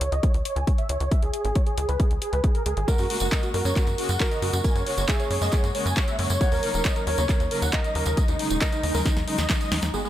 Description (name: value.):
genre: uplifting trance.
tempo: 136 BPM.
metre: 4/4.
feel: straight.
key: unclear.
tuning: A4 = 439 Hz.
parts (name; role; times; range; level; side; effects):
supersaw chords; melody; 0.0-9.9 s; D#4 to G#5; -29 LUFS; right 1 dB; sidechain pumping, low-pass filter, digital delay.
tight sequencer bass; bass; 0.0-10.1 s; D#1 to F#2; -26 LUFS; equal; sidechain pumping.
house drum kit; drums; 0.0-9.9 s; handclaps, hi-hat, snare drum; -30 LUFS; left 1 dB; low-pass filter on hats, low-pass filter on snare.
electronic kick drum; drums; 0.2-9.6 s; none; -23 LUFS; equal; none.
dark baby grand piano; second line; 2.9-10.1 s; G#4 to D#5; -31 LUFS; right 2 dB; digital delay.
muted chamber string section; sustained chords; 2.9-10.1 s; C#3 to F#4; -33 LUFS; left 3 dB; sidechain pumping.
tambourine; percussion; 2.9-10.1 s; none; -36 LUFS; right 4 dB; none.
liquid acid bass; arpeggios; 9.9-10.1 s; G#3; -30 LUFS; right 3 dB; wide subtle chorus, sidechain pumping.
room: little or no reverb.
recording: none.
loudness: -21 LUFS.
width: side -12 dB against mid.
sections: 0.0-9.9 A section.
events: drum fill 9.1-9.9.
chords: 0.0 C#5; 2.9 F#add9; 6.4 D#m7.